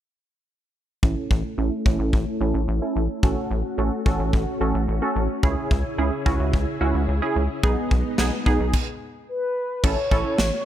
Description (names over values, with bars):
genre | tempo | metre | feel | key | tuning
synth-pop | 109 BPM | 4/4 | straight | unclear | A4 = 440 Hz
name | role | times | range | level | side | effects
funky polysynth comp | accompaniment | 1.0-10.4 s | B3 to A4 | -27 LUFS | right 4 dB | chorus, low-pass filter
ensemble organ-string | sustained chords | 1.0-8.7 s | C#3 to G#4 | -29 LUFS | left 1 dB | ensemble chorus, low-pass filter
rubbery square bass | bass | 1.0-10.5 s | A1 to C#2 | -24 LUFS | equal | none
modern studio drum kit | drums | 1.0-10.5 s | crash cymbal, kick drum, snare drum | -22 LUFS | equal | gated reverb
mellow horn-like synth lead | melody | 9.3-10.7 s | B4 to C#5 | -25 LUFS | left 1 dB | chorus, tape echo
room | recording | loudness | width
light reverb, small room ambience | none | -20 LUFS | side -11 dB against mid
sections
1.0-9.8 A section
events
filter sweep 1.0-9.8; stop 8.7-9.8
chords
1.0 A; 3.2 F#m/A; 5.4 C#m; 7.6 G#m/B; 9.8 A